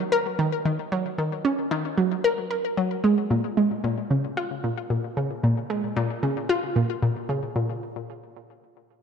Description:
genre	ambient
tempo	113 BPM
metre	4/4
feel	straight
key	Bb minor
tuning	A4 = 440 Hz
part	analog pluck	solo	0.0-7.8 s	Bb2 to Bb4	-23 LUFS	equal	chorus, vintage 12-bit sampler grit, ping-pong delay
room	wet plate reverb, RT60 2.5 s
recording	dark, warm production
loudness	-23 LUFS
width	side -6 dB against mid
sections	0.0-3.3 A section; 3.3-7.6 B section; 7.6-9.0 C section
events	none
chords	none

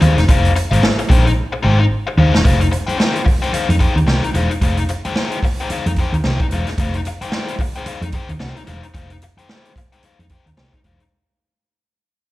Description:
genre	funk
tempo	111 BPM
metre	4/4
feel	swing 60% on 16ths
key	F minor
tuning	A4 = 440 Hz
part	biting overdriven guitar	accompaniment	0.0-11.0 s	Eb4 to G5	-21 LUFS	left 4 dB	slapback echo
part	hollow-body short-scale fingered electric bass	bass	0.0-11.0 s	E1 to F2	-16 LUFS	equal	none
part	swinging big-band drum kit	drums	0.0-11.1 s	hi-hat, kick drum, snare drum	-18 LUFS	equal	none
room	studio ambience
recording	live gig heard through the venue's PA, club ambience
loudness	-14 LUFS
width	side -17 dB against mid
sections	0.0-2.4 A section; 2.4-11.1 B section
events	drum fill 1.4-2.4; fade-out 2.4-11.1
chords	0.0 Fm7

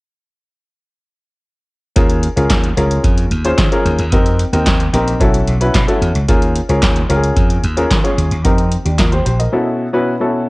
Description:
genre	early-eighties boogie funk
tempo	111 BPM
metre	4/4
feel	straight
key	unclear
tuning	A4 = 441 Hz
part	warm baby grand piano	accompaniment	2.0-10.5 s	B2 to Eb5	-17 LUFS	left 1 dB	cassette tape
part	slap bass	bass	2.0-9.5 s	Bb1 to Eb3	-16 LUFS	equal	none
part	electro analog drum machine	drums	2.0-9.5 s	handclaps, hi-hat, kick drum, snare drum	-16 LUFS	equal	cassette tape
room	light reverb, digital ambience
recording	home recording on cassette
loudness	-12 LUFS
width	side -23 dB against mid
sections	2.0-10.5 A section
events	break 9.5-10.5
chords	2.0 Eb9sus4; 4.1 F9sus4; 5.2 B9sus4; 6.3 Eb9sus4; 8.4 F9sus4; 9.5 B9sus4

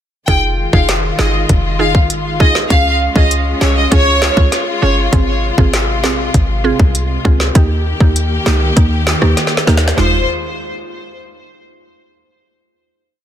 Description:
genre	dancehall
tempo	99 BPM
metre	4/4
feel	straight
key	F minor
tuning	A4 = 439 Hz
part	clear studio violin section	melody	0.3-4.9, 10.0-10.3 s	C5 to G5	-17 LUFS	equal	digital delay
part	mallet-like synth pluck	accompaniment	0.3-10.2 s	Ab3 to Ab4	-20 LUFS	right 4 dB	chorus, sidechain pumping
part	warm studio string section	sustained chords	0.3-10.3 s	C3 to G4	-22 LUFS	left 2 dB	sidechain pumping
part	short 808-style bass	bass	0.3-10.3 s	F1 to Eb2	-16 LUFS	equal	none
part	island pop drum kit	drums	0.3-10.1 s	handclaps, hi-hat, kick drum, rim click, snare drum, toms	-14 LUFS	equal	none
room	light reverb, digital ambience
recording	dense, heavily limited modern master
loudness	-11 LUFS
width	side -10 dB against mid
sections	0.3-10.0 chorus; 10.0-12.4 final chord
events	drum fill 9.4-10.0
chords	0.3 Fm7; 2.7 Db; 5.1 Ab6; 7.6 Eb; 10.0 Fm7

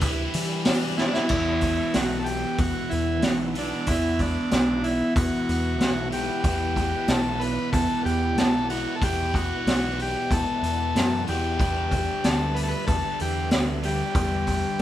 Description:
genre	psychedelic rock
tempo	94 BPM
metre	4/4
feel	straight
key	E minor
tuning	A4 = 440 Hz
part	soft string machine	sustained chords	0.0-14.8 s	G3 to F#5	-37 LUFS	right 1 dB	ensemble chorus
part	fuzz guitar	riff	0.0-14.8 s	E2 to B4	-29 LUFS	equal	distortion, phaser
part	growling picked electric bass	bass	0.0-14.8 s	B1 to E3	-30 LUFS	equal	overdrive
part	vintage drum kit	drums	0.0-14.8 s	crash cymbal, hi-hat, kick drum, snare drum	-26 LUFS	equal	none
part	combo organ	melody	1.0-14.8 s	D4 to B4	-27 LUFS	left 1 dB	none
room	wet studio reverb, RT60 0.8 s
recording	band playing live in one room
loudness	-22 LUFS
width	side -12 dB against mid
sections	0.0-1.3 A section; 1.3-14.8 B section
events	drum fill 1.0-1.3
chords	0.0 G6; 1.3 Esus2; 11.6 G6

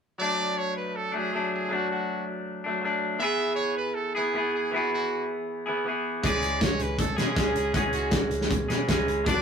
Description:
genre	indie rock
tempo	159 BPM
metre	4/4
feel	straight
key	D lydian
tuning	A4 = 440 Hz
part	brilliant trumpet	melody	0.2-9.4 s	F#4 to E5	-31 LUFS	right 3 dB	none
part	raw garage guitar	riff	0.2-9.4 s	E3 to G#4	-27 LUFS	equal	overdrive
part	vintage muted picked electric bass	bass	6.2-9.4 s	C#2 to B2	-33 LUFS	equal	none
part	loose indie drum kit	drums	6.2-9.3 s	hi-hat, kick drum, snare drum	-26 LUFS	equal	none
room	moderate studio reverb, RT60 0.5 s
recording	rough rehearsal-room recording, tube saturation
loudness	-24 LUFS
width	side -6 dB against mid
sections	0.2-9.4 A section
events	none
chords	0.2 D; 3.2 E; 6.2 C#m

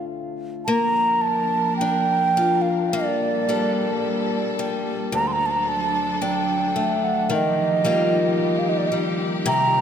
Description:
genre	celtic folk, Celtic slow air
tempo	51-57 BPM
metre	4/4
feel	rubato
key	unclear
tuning	A4 = 439 Hz
part	baroque flute	melody	0.0-9.8 s	D5 to C6	-22 LUFS	right 3 dB	none
part	picked acoustic archtop guitar	accompaniment	0.0-9.8 s	D2 to A4	-24 LUFS	left 3 dB	none
part	clear studio string section	sustained chords	0.7-9.8 s	Bb2 to Bb4	-27 LUFS	right 1 dB	none
room	wet cathedral reverb, RT60 5.2 s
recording	none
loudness	-19 LUFS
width	side -8 dB against mid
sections	0.7-9.8 A section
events	none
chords	0.0 Dm7; 0.7 Bb; 2.9 Gmadd9/Bb; 5.1 D; 7.3 Ebadd9

